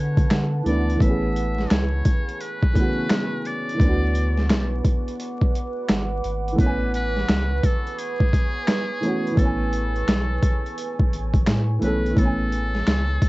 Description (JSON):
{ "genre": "lo-fi hip hop", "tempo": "86 BPM", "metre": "4/4", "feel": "swing 64% on 16ths", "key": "A major", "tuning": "A4 = 437 Hz", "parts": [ { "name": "trumpet with metal mute", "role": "melody", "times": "0.0-13.3 s", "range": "G#4 to E5", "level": "-31 LUFS", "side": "left 1 dB", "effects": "none" }, { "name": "dark upright piano", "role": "accompaniment", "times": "0.0-13.3 s", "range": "C#3 to G#5", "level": "-27 LUFS", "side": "right 1 dB", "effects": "cassette tape" }, { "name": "deep dark ambient pad", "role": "sustained chords", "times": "0.0-13.3 s", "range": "B4 to D6", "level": "-32 LUFS", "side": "right 2 dB", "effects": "chorus, built-in reverb" }, { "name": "warm sub bass", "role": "bass", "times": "0.0-13.2 s", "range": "G#1 to D3", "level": "-24 LUFS", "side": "equal", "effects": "none" }, { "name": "boom bap sampler-style drum kit", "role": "drums", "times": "0.2-13.3 s", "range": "finger snaps, hi-hat, kick drum, snare drum", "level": "-20 LUFS", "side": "equal", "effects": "overdrive" } ], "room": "light reverb", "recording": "worn, warbling old tape, cassette tape, vinyl crackle, warbly pitch drift, nothing above 7.9 kHz", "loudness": "-20 LUFS", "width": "side -20 dB against mid", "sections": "0.0-12.2 A section; 12.2-13.3 B section", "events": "none", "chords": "0.0 D6; 1.0 Amaj9; 3.8 D6; 6.6 Amaj9", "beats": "0.30 | 1.00 1.70 2.40 3.10 | 3.79 4.49 5.19 5.88 | 6.58 7.28 7.98 8.68 | 9.37 10.07 10.77 11.47 | 12.16 12.86" }